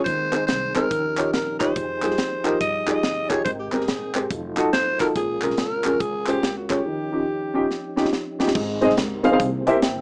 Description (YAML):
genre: uptempo gospel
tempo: 141 BPM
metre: 4/4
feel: swing 64% on 8ths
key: Ab major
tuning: A4 = 440 Hz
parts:
  - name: growling alto saxophone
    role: melody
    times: 0.0-8.1 s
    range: Gb4 to Eb5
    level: -25 LUFS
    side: equal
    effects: none
  - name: percussive tonewheel organ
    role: sustained chords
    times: 0.0-10.0 s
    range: Eb3 to G5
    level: -32 LUFS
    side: equal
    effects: slow rotary speaker, chorus vibrato
  - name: dark upright piano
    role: accompaniment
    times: 0.1-10.0 s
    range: Ab2 to G5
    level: -22 LUFS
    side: equal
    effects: none
  - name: upright bass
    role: bass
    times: 0.1-10.0 s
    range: F1 to G2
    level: -36 LUFS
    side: equal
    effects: none
  - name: crisp fusion drum kit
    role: drums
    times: 0.1-9.9 s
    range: crash cymbal, hi-hat, kick drum, snare drum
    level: -26 LUFS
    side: equal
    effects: none
  - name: group handclap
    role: percussion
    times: 0.3-6.8 s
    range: none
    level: -29 LUFS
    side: equal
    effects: none
room: light reverb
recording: rough home demo mix, small speaker sound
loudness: -20 LUFS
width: side -36 dB against mid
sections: 0.0-8.6 A section; 8.6-10.0 B section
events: drum fill 7.7-8.6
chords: 0.1 Ab; 0.9 Eb9; 1.8 Fm9; 3.5 Abmaj9; 4.3 F7b9; 5.2 Bbm7; 6.9 Eb9; 8.6 Ab; 9.4 C7